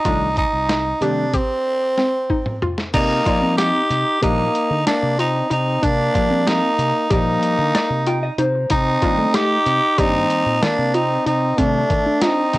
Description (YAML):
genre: progressive instrumental, band music in an uneven meter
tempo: 187 BPM (eighths)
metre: 9/8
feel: straight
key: unclear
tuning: A4 = 440 Hz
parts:
  - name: raspy tenor saxophone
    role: melody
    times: 0.0-12.6 s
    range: C4 to G4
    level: -19 LUFS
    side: right 1 dB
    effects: cassette tape
  - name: hollow-body jazz guitar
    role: accompaniment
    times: 0.1-12.6 s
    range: Eb3 to G5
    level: -23 LUFS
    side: left 2 dB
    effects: cassette tape
  - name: hollow square pluck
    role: arpeggios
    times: 0.1-12.6 s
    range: Eb3 to D5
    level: -25 LUFS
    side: left 1 dB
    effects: chorus, cassette tape
  - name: modern bright fingered electric bass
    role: bass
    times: 0.1-12.6 s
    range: C2 to D4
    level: -23 LUFS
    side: equal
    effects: transformer saturation
  - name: lo-fi sampler-style drum kit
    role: drums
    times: 0.1-12.6 s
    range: crash cymbal, hi-hat, kick drum, snare drum, toms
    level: -23 LUFS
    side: equal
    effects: cassette tape
  - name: clear trombone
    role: second line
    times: 2.9-12.6 s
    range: A3 to Eb4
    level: -24 LUFS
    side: left 3 dB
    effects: cassette tape
room: little or no reverb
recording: home recording on cassette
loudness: -16 LUFS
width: side -18 dB against mid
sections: 0.0-2.9 A section; 2.9-12.6 B section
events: drum fill 2.0-2.9; hollow-body jazz guitar fill 7.7-8.7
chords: 0.1 Cm69; 2.9 Ebmaj7; 8.7 Cm7; 11.6 F7/C